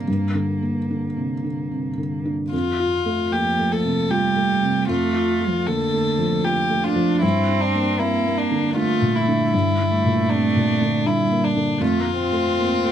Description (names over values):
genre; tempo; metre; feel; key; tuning
neoclassical piano and strings; 73-80 BPM; 3/4; rubato; unclear; A4 = 444 Hz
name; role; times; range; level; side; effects
dark cello; second line; 0.0-12.9 s; D3 to D4; -24 LUFS; right 6 dB; none
felt-muted upright piano; accompaniment; 0.0-12.9 s; F2 to F4; -22 LUFS; equal; none
rich violin; melody; 2.5-12.9 s; D4 to A4; -22 LUFS; left 3 dB; none
room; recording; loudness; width
little or no reverb; close, detailed microphones; -18 LUFS; side -10 dB against mid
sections
0.0-2.5 A section; 2.5-12.9 B section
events
none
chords
0.0 Gm; 2.5 Fadd9; 4.9 Dm/F; 7.2 Gm; 11.8 F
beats
| 0.07 0.90 1.72 | 2.53 3.32 4.11 | 4.89 5.67 6.45 | 7.23 8.00 8.76 | 9.53 10.30 11.06 | 11.82 12.59